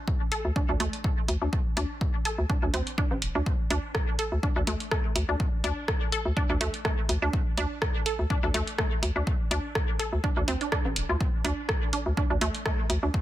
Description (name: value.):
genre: minimal techno.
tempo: 124 BPM.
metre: 4/4.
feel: swing 54% on 16ths.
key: unclear.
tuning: A4 = 439 Hz.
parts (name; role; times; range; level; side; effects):
electronic kick drum; drums; 0.1-13.2 s; none; -28 LUFS; equal; none.
resonant blip pluck; riff; 0.3-13.1 s; A3 to A4; -32 LUFS; right 1 dB; chorus, cassette tape, sidechain pumping, dub echo.
punchy analog drum machine; drums; 0.3-13.0 s; hi-hat, rim click; -32 LUFS; equal; none.
hollow knocking FM bass; bass; 0.4-13.1 s; D1 to D2; -27 LUFS; equal; sidechain pumping.
room: little or no reverb.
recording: dense, heavily limited modern master.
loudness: -25 LUFS.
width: side -14 dB against mid.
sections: 0.0-13.2 A section.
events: none.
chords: none.